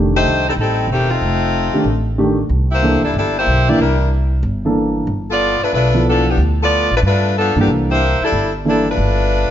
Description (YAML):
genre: jazz, big band swing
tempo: 186 BPM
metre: 4/4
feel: swing 64% on 8ths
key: unclear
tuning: A4 = 440 Hz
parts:
  - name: warm baby grand piano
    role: accompaniment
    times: 0.0-8.8 s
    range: Eb3 to A4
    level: -19 LUFS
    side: right 1 dB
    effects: none
  - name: upright bass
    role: bass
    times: 0.0-9.5 s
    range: E1 to G2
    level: -18 LUFS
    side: equal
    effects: none
  - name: clear saxophone section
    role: melody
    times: 0.2-9.5 s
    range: Eb3 to D5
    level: -16 LUFS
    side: left 1 dB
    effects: none
room: moderate recital hall reverb, RT60 1.6 s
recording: nothing above 7.5 kHz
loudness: -13 LUFS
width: side -10 dB against mid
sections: 0.0-9.5 A section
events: none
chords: 0.0 F13; 2.5 C13; 5.1 G13; 7.7 C13; 9.0 G9